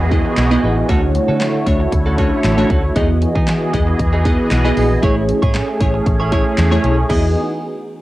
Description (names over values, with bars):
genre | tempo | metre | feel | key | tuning
dance-pop | 116 BPM | 4/4 | straight | E major | A4 = 437 Hz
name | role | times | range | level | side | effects
sweeping resonant pad | sustained chords | 0.0-7.3 s | D3 to D#5 | -20 LUFS | right 1 dB | chorus, sidechain pumping, cassette tape
direct-recorded clean electric guitar | riff | 0.0-7.3 s | B3 to D#5 | -25 LUFS | right 2 dB | lush chorus, cassette tape
vintage muted fingered electric bass | bass | 0.0-7.3 s | A1 to E3 | -18 LUFS | equal | sidechain pumping
downlifter | sound effects | 0.0-3.0 s | none | -32 LUFS | equal | none
glassy wavetable pluck | accompaniment | 0.1-7.3 s | A3 to D#5 | -19 LUFS | equal | chorus, sidechain pumping, cassette tape
house drum kit | drums | 0.1-7.2 s | crash cymbal, handclaps, hi-hat, kick drum, snare drum | -19 LUFS | equal | cassette tape
room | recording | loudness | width
light reverb, digital ambience | home recording on cassette | -13 LUFS | side -16 dB against mid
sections
0.0-7.1 A section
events
none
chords
0.0 Emaj7; 0.9 Dmaj7; 3.0 Emaj7; 5.0 Amaj7; 7.1 Emaj7